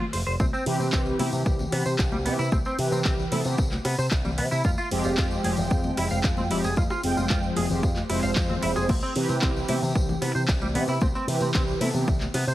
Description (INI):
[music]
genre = nu-disco, nu disco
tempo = 113 BPM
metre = 4/4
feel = straight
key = C major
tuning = A4 = 439 Hz
[part]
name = clean electric guitar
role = riff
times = 0.0-12.5 s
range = G3 to F5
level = -32 LUFS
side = right 1 dB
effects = ensemble chorus, vintage 12-bit sampler grit, tape echo
[part]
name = congas, tambourine and bongos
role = percussion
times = 0.0-12.5 s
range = none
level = -34 LUFS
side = left 2 dB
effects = none
[part]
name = picked electric bass with an envelope filter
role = bass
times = 0.1-12.5 s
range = F1 to C3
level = -28 LUFS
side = equal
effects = sidechain pumping
[part]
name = pop drum kit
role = drums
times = 0.1-12.4 s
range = crash cymbal, handclaps, hi-hat, rim click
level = -32 LUFS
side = equal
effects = overdrive
[part]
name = electronic kick drum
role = drums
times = 0.4-12.2 s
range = none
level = -25 LUFS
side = equal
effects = overdrive
[part]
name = mellow synth brass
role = accompaniment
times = 0.7-12.1 s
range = E3 to G5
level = -28 LUFS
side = equal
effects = chorus, tape echo
[sound]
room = light reverb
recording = heavily compressed radio sound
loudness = -22 LUFS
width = side -14 dB against mid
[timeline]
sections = 0.0-12.5 A section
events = none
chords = 0.4 Cmaj7; 4.6 Fmadd9; 8.9 Cmaj7